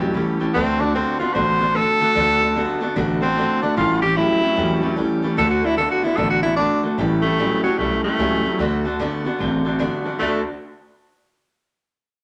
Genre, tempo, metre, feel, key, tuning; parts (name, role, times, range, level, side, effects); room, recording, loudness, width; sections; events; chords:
rock; 149 BPM; 4/4; swing 63% on 8ths; D major; A4 = 441 Hz
picked steel-string acoustic guitar; accompaniment; 0.0-10.4 s; A2 to A4; -27 LUFS; equal
electric guitar through a small old amp; riff; 0.0-10.4 s; A2 to F#4; -26 LUFS; equal; spring reverb
upright bass; bass; 0.0-10.4 s; E1 to E2; -30 LUFS; equal
breathy tenor saxophone; melody; 0.5-10.4 s; F#3 to C5; -22 LUFS; equal
moderate large studio reverb, RT60 0.9 s; -20 LUFS; mono
0.0-7.0 A section; 7.0-10.2 B section; 10.2-11.8 C section
0.0 A7; 0.5 D; 3.8 A7; 5.4 D; 7.0 A7; 8.6 D